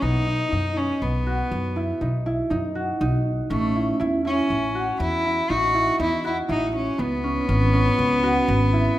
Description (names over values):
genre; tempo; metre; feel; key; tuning
contemporary instrumental, chamber music in an uneven meter; 120 BPM; 7/4; straight; B mixolydian; A4 = 441 Hz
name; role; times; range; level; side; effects
warm cello; melody; 0.0-9.0 s; A3 to F#4; -23 LUFS; left 1 dB; none
concert harp; arpeggios; 0.0-9.0 s; B3 to F#4; -25 LUFS; right 1 dB; none
upright bass; bass; 0.0-8.9 s; G#1 to F#2; -25 LUFS; equal; none
room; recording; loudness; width
moderate recital hall reverb, RT60 1.6 s; none; -20 LUFS; side -14 dB against mid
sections
0.0-9.0 A section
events
none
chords
0.0 B; 3.5 A; 7.0 C#7sus4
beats
| 0.02 0.52 1.01 1.51 2.01 2.51 3.01 | 3.51 4.00 4.50 5.00 5.50 6.00 6.49 | 6.99 7.49 7.99 8.48 8.98